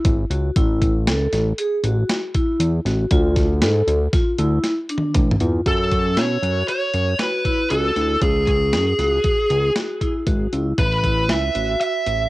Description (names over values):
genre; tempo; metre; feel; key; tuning
progressive instrumental, band music in an uneven meter; 117 BPM; 5/4; straight; F# minor; A4 = 440 Hz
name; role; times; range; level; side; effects
vibraphone with hard mallets; arpeggios; 0.0-11.9 s; C#4 to A4; -24 LUFS; equal; cassette tape
fat analog bass; bass; 0.0-12.3 s; G#1 to B2; -21 LUFS; equal; none
boom bap sampler-style drum kit; drums; 0.0-12.2 s; hi-hat, kick drum, snare drum, toms; -21 LUFS; equal; cassette tape
smooth overdriven lead guitar; melody; 5.7-12.3 s; G#4 to E5; -20 LUFS; right 1 dB; analog delay
room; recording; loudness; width
light reverb; home recording on cassette; -17 LUFS; side -18 dB against mid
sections
0.0-5.7 A section; 5.7-12.3 B section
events
drum fill 4.6-5.7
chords
0.0 C#sus4; 0.6 A5; 3.1 Dm; 5.7 F#m; 8.2 C#sus4; 10.8 Asus2